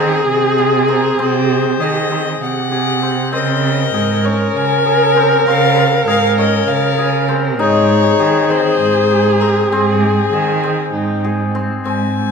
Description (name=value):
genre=contemporary instrumental, chamber music in an uneven meter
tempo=197 BPM (eighths)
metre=7/8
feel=straight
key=Ab major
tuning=A4 = 439 Hz
part: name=dark violin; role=melody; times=0.0-12.3 s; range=Ab4 to Ab5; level=-18 LUFS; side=left 7 dB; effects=none
part: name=dark viola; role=second line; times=0.0-11.5 s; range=Eb4 to Bb4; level=-17 LUFS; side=right 1 dB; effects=none
part: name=hammered dulcimer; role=arpeggios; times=0.0-12.3 s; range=Bb3 to Ab4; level=-20 LUFS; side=left 3 dB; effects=none
part: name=rich cello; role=bass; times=0.0-12.3 s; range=Ab2 to Eb3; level=-18 LUFS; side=right 4 dB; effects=none
room=wet recital hall reverb, RT60 1.4 s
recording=minimal, uncompressed stereo recording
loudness=-12 LUFS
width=side -5 dB against mid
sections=0.0-11.8 A section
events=none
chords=0.0 Ab7/C; 3.3 Dbmaj7; 7.6 Ab